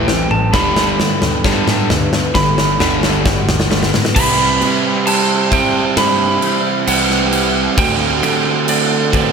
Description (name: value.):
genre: post-rock.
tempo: 66 BPM.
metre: 4/4.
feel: straight.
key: unclear.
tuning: A4 = 445 Hz.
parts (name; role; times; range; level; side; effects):
lightly driven lead guitar; melody; 0.0-9.3 s; D5 to B5; -19 LUFS; right 1 dB; slapback echo.
clean electric guitar; arpeggios; 0.0-9.3 s; C3 to G4; -26 LUFS; left 2 dB; wide subtle chorus, slapback echo.
vibraphone with medium hard mallets; arpeggios; 0.0-9.3 s; A4 to C5; -27 LUFS; equal; slapback echo.
cranked stack guitar; riff; 0.0-4.1 s; G2 to G3; -21 LUFS; left 9 dB; overdrive, slapback echo.
overdriven semi-hollow guitar; riff; 0.0-9.3 s; G2 to F#4; -19 LUFS; right 9 dB; slapback echo.
fuzz fingered electric bass; bass; 0.0-9.3 s; G1 to D3; -22 LUFS; left 1 dB; overdrive.
big rock drum kit; drums; 0.1-9.3 s; crash cymbal, kick drum, snare drum, toms; -16 LUFS; equal; none.
room: moderate lush hall reverb, RT60 2.9 s.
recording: big arena sound.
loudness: -12 LUFS.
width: side -6 dB against mid.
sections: 0.0-4.2 A section; 4.2-9.3 B section.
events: build-up 0.0-4.2; drum fill 0.0-4.2.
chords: 0.0 Am7; 0.5 Gmaj7; 4.2 Cmaj7; 7.8 D7sus4.